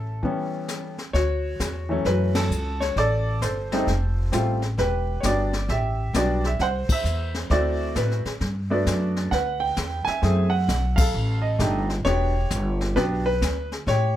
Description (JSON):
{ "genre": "jazz piano trio", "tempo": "132 BPM", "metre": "4/4", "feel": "swing 65% on 8ths", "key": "unclear", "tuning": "A4 = 439 Hz", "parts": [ { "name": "clear concert grand piano", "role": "melody", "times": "0.0-14.2 s", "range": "E3 to G#5", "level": "-25 LUFS", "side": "equal", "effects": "none" }, { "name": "upright bass", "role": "bass", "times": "0.0-14.2 s", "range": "E1 to A2", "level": "-24 LUFS", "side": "equal", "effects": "none" }, { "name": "jazz brush drum kit", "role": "drums", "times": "0.2-14.2 s", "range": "brushed snare drum, crash cymbal, hi-hat, kick drum, ride cymbal, snare drum", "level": "-28 LUFS", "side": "left 1 dB", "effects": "none" } ], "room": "light reverb", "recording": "none", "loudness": "-21 LUFS", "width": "side -12 dB against mid", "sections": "0.0-1.1 A section; 1.1-14.2 B section", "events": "band accent 2.3, 6.8, 10.9", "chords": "0.0 A7; 1.1 Dmaj7; 3.0 Csus2; 3.9 Fadd9; 4.8 Em7; 6.6 C; 7.5 D7; 8.4 Gmaj7; 10.2 F#m7b5; 11.1 F13; 12.1 Em7" }